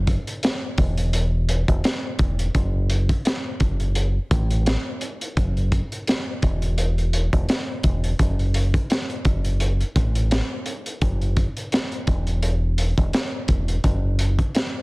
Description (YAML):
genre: hip hop, boom-bap hip-hop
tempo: 85 BPM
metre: 4/4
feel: swing 55% on 16ths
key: unclear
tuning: A4 = 440 Hz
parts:
  - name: deep dub fingered electric bass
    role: bass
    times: 0.0-14.4 s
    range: E1 to A1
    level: -21 LUFS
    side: equal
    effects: none
  - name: crunchy breakbeat drum kit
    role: drums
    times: 0.1-14.7 s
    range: hi-hat, kick drum, snare drum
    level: -22 LUFS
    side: equal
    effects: none
room: little or no reverb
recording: dense, heavily limited modern master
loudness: -20 LUFS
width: side -25 dB against mid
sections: 0.0-14.8 A section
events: none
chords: none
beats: 0.43 1.14 1.84 | 2.55 3.25 3.96 4.67 | 5.37 6.08 6.78 7.49 | 8.20 8.90 9.61 10.31 | 11.02 11.72 12.43 13.14 | 13.84 14.55